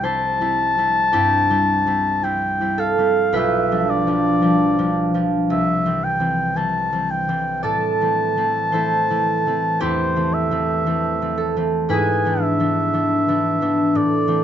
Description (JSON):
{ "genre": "classical, romantic duo for oboe and harp", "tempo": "53-60 BPM", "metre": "4/4", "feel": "rubato", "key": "C major", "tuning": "A4 = 438 Hz", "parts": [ { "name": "warm oboe", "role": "melody", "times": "0.0-14.4 s", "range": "C5 to A5", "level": "-20 LUFS", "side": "left 1 dB", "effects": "none" }, { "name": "concert harp", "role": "accompaniment", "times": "0.0-14.4 s", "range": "B1 to D5", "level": "-19 LUFS", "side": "right 1 dB", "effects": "none" } ], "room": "light reverb", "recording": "dark, warm production, nothing above 7.5 kHz", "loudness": "-17 LUFS", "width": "side -9 dB against mid", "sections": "0.0-14.4 A section", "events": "none", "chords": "0.0 C; 3.4 G7/B; 5.5 C; 7.6 Am; 11.9 E7/G#" }